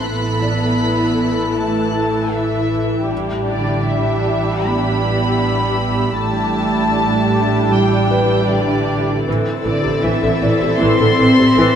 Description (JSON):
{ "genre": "cinematic, suspense film score", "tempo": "78 BPM", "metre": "4/4", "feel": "straight", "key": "A minor", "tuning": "A4 = 439 Hz", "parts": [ { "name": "warm studio violin section", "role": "melody", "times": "0.0-11.8 s", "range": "D5 to C6", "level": "-22 LUFS", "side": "left 2 dB", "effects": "none" }, { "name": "dark studio violin section", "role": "second line", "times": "0.0-11.8 s", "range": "E4 to A4", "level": "-23 LUFS", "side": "left 2 dB", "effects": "none" }, { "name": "dark symphonic viola section", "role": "accompaniment", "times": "0.0-11.8 s", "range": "C3 to E4", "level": "-20 LUFS", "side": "equal", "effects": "none" }, { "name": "dark symphonic double bass section", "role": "bass", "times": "0.0-11.7 s", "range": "A1", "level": "-21 LUFS", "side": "right 3 dB", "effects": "none" }, { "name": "warm symphonic cello section", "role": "bass", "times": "0.0-11.8 s", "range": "D3 to C4", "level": "-20 LUFS", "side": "right 1 dB", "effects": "none" }, { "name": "felt-muted upright piano", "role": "texture", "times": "0.0-3.1, 8.1-11.8 s", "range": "A4 to D5", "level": "-26 LUFS", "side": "left 4 dB", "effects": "none" }, { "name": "warm symphonic violin section", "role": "texture", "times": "0.0-11.8 s", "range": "A5 to B6", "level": "-29 LUFS", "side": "left 4 dB", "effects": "none" } ], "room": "moderate scoring stage reverb, RT60 2.0 s", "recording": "dark, warm production", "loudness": "-14 LUFS", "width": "side -8 dB against mid", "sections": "0.0-11.8 A section", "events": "none", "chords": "0.0 A5; 3.1 G6/A; 9.3 Am" }